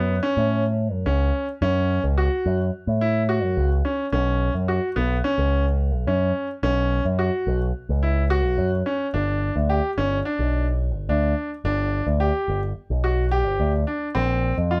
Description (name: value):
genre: progressive instrumental, band music in an uneven meter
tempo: 215 BPM (eighths)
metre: 9/8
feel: straight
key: unclear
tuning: A4 = 440 Hz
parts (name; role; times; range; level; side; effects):
- bright grand piano; arpeggios; 0.0-14.8 s; B3 to G4; -27 LUFS; equal; none
- picked electric bass with an envelope filter; bass; 0.0-14.8 s; G1 to A2; -24 LUFS; equal; none
room: moderate studio reverb, RT60 0.6 s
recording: band playing live in one room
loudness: -23 LUFS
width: mono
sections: 0.0-14.8 A section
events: none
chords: 0.0 F#m; 4.1 Bsus2; 9.1 G; 14.2 A#sus2